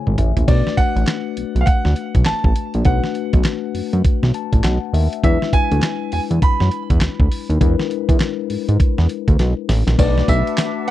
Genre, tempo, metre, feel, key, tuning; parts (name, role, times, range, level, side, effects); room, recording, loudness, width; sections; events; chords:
R&B, new jack swing; 101 BPM; 4/4; swing 62% on 16ths; B dorian; A4 = 440 Hz
mellow tine electric piano; accompaniment; 0.0-10.9 s; F#3 to A5; -24 LUFS; left 16 dB
fat analog bass; bass; 0.1-10.4 s; G#1 to G#2; -17 LUFS; equal
dusty soul sampler-style drum kit; drums; 0.1-10.9 s; crash cymbal, handclaps, hi-hat, kick drum, snare drum, tambourine, toms; -17 LUFS; right 1 dB
clear baby grand piano; melody; 0.5-10.9 s; D5 to B5; -24 LUFS; right 3 dB
bright large flute ensemble; sustained chords; 10.0-10.9 s; B4 to D6; -29 LUFS; right 1 dB
little or no reverb; dry, close 1970s-style studio recording; -15 LUFS; side -14 dB against mid
0.5-10.0 A section
tine electric piano fill 0.0-0.5, 4.0-5.2; drum fill 0.0-0.5, 9.4-10.0
0.5 Bm7; 5.2 E7; 10.0 Bm7